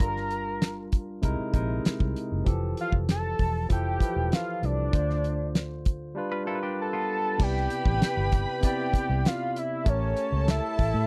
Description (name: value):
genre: lush 1970s-style soul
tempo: 97 BPM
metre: 4/4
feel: straight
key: C major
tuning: A4 = 440 Hz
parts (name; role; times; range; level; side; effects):
- fat analog lead; melody; 0.0-11.1 s; C#5 to Bb5; -32 LUFS; equal; none
- barky tine electric piano; accompaniment; 0.0-11.1 s; C3 to D5; -36 LUFS; equal; overdrive
- vintage muted fingered electric bass; bass; 0.0-11.1 s; E1 to A2; -31 LUFS; equal; none
- damped 70s drum kit; drums; 0.0-10.9 s; crash cymbal, hi-hat, kick drum, snare drum; -27 LUFS; equal; none
- semi-hollow electric guitar; riff; 6.3-7.4 s; B3 to B4; -38 LUFS; equal; none
- warm studio string section; second line; 7.4-11.1 s; A4 to B5; -38 LUFS; equal; none
room: little or no reverb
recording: dry, close 1970s-style studio recording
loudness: -27 LUFS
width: mono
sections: 0.0-7.4 A section; 7.4-11.1 B section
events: none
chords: 0.0 Gm7; 1.2 C7alt; 2.5 Fmaj9; 4.9 Dm7; 6.2 G7; 7.4 Cmaj9; 9.9 A7b9